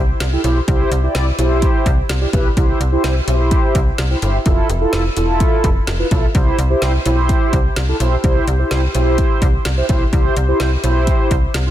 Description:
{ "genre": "synth-pop", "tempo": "127 BPM", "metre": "4/4", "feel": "straight", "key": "C major", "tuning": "A4 = 440 Hz", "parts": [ { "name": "slap-like FM bass", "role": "bass", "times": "0.0-11.7 s", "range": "E1 to C2", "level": "-17 LUFS", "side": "equal", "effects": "none" }, { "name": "deep house drum kit", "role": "drums", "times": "0.2-11.7 s", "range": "hi-hat, kick drum, snare drum", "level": "-18 LUFS", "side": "equal", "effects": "none" }, { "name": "mellow synth brass", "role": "accompaniment", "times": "0.3-11.7 s", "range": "E4 to D5", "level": "-19 LUFS", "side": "right 1 dB", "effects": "chorus" } ], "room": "light reverb", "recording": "dense, heavily limited modern master", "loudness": "-13 LUFS", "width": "side -12 dB against mid", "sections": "0.0-11.7 A section", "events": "none", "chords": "0.0 C; 4.5 Fmaj7; 6.3 C" }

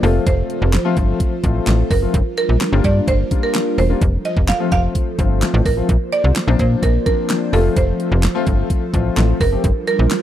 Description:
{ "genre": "dance-pop", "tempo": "128 BPM", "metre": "4/4", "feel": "straight", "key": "unclear", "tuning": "A4 = 442 Hz", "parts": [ { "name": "buzzing marimba with medium hard mallets", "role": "melody", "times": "0.0-10.2 s", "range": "A4 to F5", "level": "-22 LUFS", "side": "right 4 dB", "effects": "none" }, { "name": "warm grand piano", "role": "accompaniment", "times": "0.0-9.6 s", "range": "F3 to G4", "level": "-22 LUFS", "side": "left 10 dB", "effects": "sidechain pumping" }, { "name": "airy breathy pad", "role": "sustained chords", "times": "0.0-10.2 s", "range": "F3 to D5", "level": "-26 LUFS", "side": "right 2 dB", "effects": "chorus, sidechain pumping" }, { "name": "slap-like FM bass", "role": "bass", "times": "0.0-10.1 s", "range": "E1 to Bb2", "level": "-16 LUFS", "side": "equal", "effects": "sidechain pumping" }, { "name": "pop drum kit", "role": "drums", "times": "0.0-10.2 s", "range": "handclaps, hi-hat, kick drum, snare drum", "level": "-19 LUFS", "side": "equal", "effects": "overdrive" } ], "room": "little or no reverb", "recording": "dry, close 1970s-style studio recording", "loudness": "-14 LUFS", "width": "side -11 dB against mid", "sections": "0.0-10.2 A section", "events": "none", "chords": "0.0 F; 2.1 Gm7; 4.0 F; 5.9 Bbadd9; 7.5 F; 9.6 Gm7" }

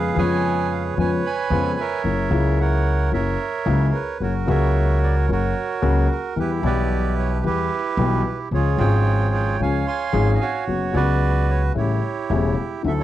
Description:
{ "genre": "tango", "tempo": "111 BPM", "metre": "4/4", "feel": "rubato", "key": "unclear", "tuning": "A4 = 440 Hz", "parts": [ { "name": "bandoneon", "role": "melody", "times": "0.0-13.0 s", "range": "E4 to C6", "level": "-24 LUFS", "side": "right 6 dB", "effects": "cassette tape" }, { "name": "warm concert grand piano", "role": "accompaniment", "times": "0.0-13.0 s", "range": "E1 to G#4", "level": "-23 LUFS", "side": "left 5 dB", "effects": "cassette tape" }, { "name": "upright bass", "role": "bass", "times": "0.0-13.0 s", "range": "E1 to E#2", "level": "-21 LUFS", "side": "equal", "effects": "none" } ], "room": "light reverb", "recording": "home recording on cassette", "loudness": "-18 LUFS", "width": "side -13 dB against mid", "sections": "0.0-12.8 A section", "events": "none", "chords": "0.0 C#7/E#; 2.0 F#7; 4.2 F#; 6.4 Em; 8.5 C#; 10.7 F#sus4; 11.8 A7" }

